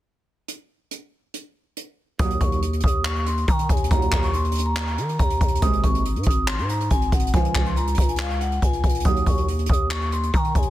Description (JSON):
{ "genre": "hip hop, trap", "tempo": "140 BPM", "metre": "4/4", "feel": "half-time", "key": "Eb dorian", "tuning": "A4 = 441 Hz", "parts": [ { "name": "jazz brush drum kit", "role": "drums", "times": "0.5-10.7 s", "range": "handclaps, hi-hat, kick drum", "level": "-22 LUFS", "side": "equal", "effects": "none" }, { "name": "vibraphone with medium hard mallets", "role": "melody", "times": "2.2-10.7 s", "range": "F5 to Eb6", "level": "-27 LUFS", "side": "left 1 dB", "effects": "tape echo" }, { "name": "warm brass ensemble", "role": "stabs", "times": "2.2-9.5 s", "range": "Db2 to Ab3", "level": "-29 LUFS", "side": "right 6 dB", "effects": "none" }, { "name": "growling 808-style bass", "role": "bass", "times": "2.2-10.7 s", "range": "Ab1 to Eb3", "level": "-24 LUFS", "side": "equal", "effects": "none" } ], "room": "small room ambience", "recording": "dense, heavily limited modern master", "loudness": "-19 LUFS", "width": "side -14 dB against mid", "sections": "0.5-2.2 A section; 2.2-10.7 B section", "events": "none", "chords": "0.5 N.C.; 2.2 Ebm; 5.6 Ab; 7.3 Db; 9.1 Ebm" }